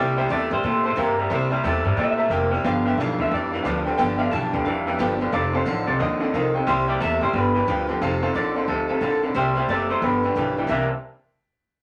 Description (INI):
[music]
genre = rock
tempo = 179 BPM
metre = 4/4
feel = swing 63% on 8ths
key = unclear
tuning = A4 = 440 Hz
[part]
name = electric guitar through a small old amp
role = melody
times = 0.0-10.9 s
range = A4 to A5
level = -28 LUFS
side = equal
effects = phaser
[part]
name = dark upright piano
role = accompaniment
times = 0.0-10.9 s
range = B4 to C6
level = -31 LUFS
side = equal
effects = none
[part]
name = picked steel-string acoustic guitar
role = accompaniment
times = 0.0-10.9 s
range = G2 to A4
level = -33 LUFS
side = equal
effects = none
[part]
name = electric guitar through a small old amp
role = riff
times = 0.0-10.9 s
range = F2 to D4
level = -27 LUFS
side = equal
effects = none
[part]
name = upright bass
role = bass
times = 0.0-10.9 s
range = F1 to Bb2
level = -30 LUFS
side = equal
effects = none
[sound]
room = wet studio reverb, RT60 0.5 s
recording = none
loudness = -22 LUFS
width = mono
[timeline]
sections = 0.0-8.0 A section; 8.0-10.7 B section; 10.7-11.8 C section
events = none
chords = 0.0 C7; 2.7 G7; 5.3 F7; 6.7 C7; 7.3 G7; 8.0 F7; 9.4 C7; 10.0 G7; 10.7 C9